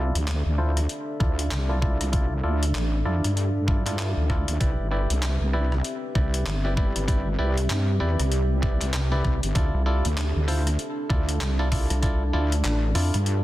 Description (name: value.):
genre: glitch hop.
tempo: 97 BPM.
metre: 4/4.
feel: swing 60% on 16ths.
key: D dorian.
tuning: A4 = 440 Hz.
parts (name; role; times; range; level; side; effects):
dark analog pad; sustained chords; 0.0-13.4 s; C4 to A5; -35 LUFS; right 1 dB; chorus, sidechain pumping.
clav; stabs; 0.0-13.2 s; E4 to D5; -31 LUFS; equal; vintage 12-bit sampler grit, sidechain pumping, low-pass filter, dub echo.
wobble bass; bass; 0.0-13.4 s; G1 to G2; -24 LUFS; equal; chorus.
deep dark ambient pad; texture; 0.2-13.4 s; C4 to E5; -35 LUFS; equal; chorus, built-in reverb, sidechain pumping.
boom bap sampler-style drum kit; drums; 0.2-13.4 s; handclaps, hi-hat, rim click; -32 LUFS; left 1 dB; small room reverb.
electronic kick drum; drums; 1.2-12.2 s; none; -24 LUFS; equal; small room reverb.
rubbery square bass; bass; 9.7-13.1 s; C2 to F2; -23 LUFS; equal; none.
room: light reverb.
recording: dense, heavily limited modern master.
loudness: -22 LUFS.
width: side -16 dB against mid.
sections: 0.0-13.4 A section.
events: filter sweep on clav 0.0-13.4.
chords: 0.0 Dmadd9; 4.6 Cmaj7; 9.6 Dmadd9.